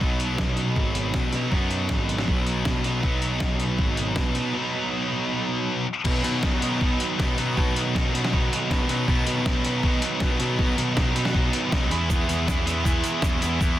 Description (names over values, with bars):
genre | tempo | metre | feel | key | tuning
indie rock | 159 BPM | 4/4 | straight | B major | A4 = 441 Hz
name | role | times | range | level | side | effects
distorted electric guitar | riff | 0.0-13.8 s | F#3 to G#4 | -29 LUFS | right 8 dB | distortion, analog chorus, analog delay
scooped high-gain guitar | riff | 0.0-13.8 s | B2 to E4 | -27 LUFS | left 6 dB | distortion
fuzz picked electric bass | bass | 0.0-13.8 s | G#1 to B2 | -27 LUFS | equal | overdrive
trip hop sampler-style drum kit | drums | 0.0-13.7 s | crash cymbal, hi-hat, kick drum, snare drum | -25 LUFS | equal | none
tube shaker | percussion | 12.1-13.7 s | none | -41 LUFS | right 7 dB | none
room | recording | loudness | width
little or no reverb | dense, heavily limited modern master | -21 LUFS | side -13 dB against mid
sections
0.0-6.1 A section; 6.1-13.8 A section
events
none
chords
0.0 B; 5.9 N.C.; 6.1 B; 11.9 E